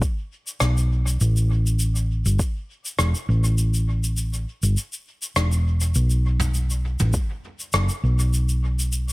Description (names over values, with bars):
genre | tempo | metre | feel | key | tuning
ambient dub | 101 BPM | 4/4 | swing 54% on 16ths | unclear | A4 = 441 Hz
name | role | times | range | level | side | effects
electronic kick drum | drums | 0.0-2.5, 7.1-7.3 s | none | -25 LUFS | equal | overdrive
soft brush drum kit | drums | 0.0-9.1 s | rim click, shaker, toms | -27 LUFS | left 1 dB | dub echo
hollow-body short-scale fingered electric bass | bass | 0.6-9.1 s | E1 to B1 | -20 LUFS | equal | none
room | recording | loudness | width
little or no reverb | none | -20 LUFS | side -21 dB against mid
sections
0.0-9.1 A section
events
kick drops out 3.6-6.0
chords
none